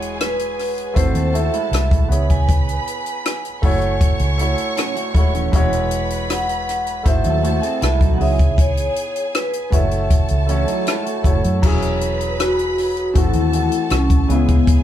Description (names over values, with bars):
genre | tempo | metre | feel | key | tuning
lush 1970s-style soul | 79 BPM | 4/4 | straight | E major | A4 = 440 Hz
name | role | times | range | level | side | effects
rich studio violin section | second line | 0.0-14.8 s | G#4 to C#6 | -29 LUFS | equal | none
warm concert grand piano | accompaniment | 0.0-14.8 s | C#3 to C#5 | -24 LUFS | equal | none
vintage muted fingered electric bass | bass | 0.0-14.8 s | D#1 to F#2 | -20 LUFS | equal | none
compact cocktail drum kit | drums | 0.0-14.8 s | crash cymbal, hi-hat, kick drum, rim click | -18 LUFS | equal | none
vibraphone with medium hard mallets | melody | 0.2-14.8 s | B3 to G#5 | -23 LUFS | left 1 dB | none
electric guitar through a small old amp | riff | 1.0-11.6 s | E3 to A4 | -26 LUFS | right 4 dB | none
room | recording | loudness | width
moderate studio reverb, RT60 0.6 s | band playing live in one room | -16 LUFS | side -11 dB against mid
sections
0.0-11.6 A section; 11.6-14.8 A section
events
none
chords
0.0 E69; 1.0 G#7b9b13; 2.1 C#m7; 3.6 F#m7; 5.5 E69; 7.1 G#7b9b13; 8.2 C#m7; 9.7 F#m7; 11.6 E69; 13.2 G#7b9b13; 14.3 C#m7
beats
0.19 0.95 1.72 | 2.48 3.24 4.01 4.77 | 5.53 6.29 7.05 7.82 | 8.58 9.34 10.10 10.87 | 11.63 12.39 13.15 13.91 | 14.67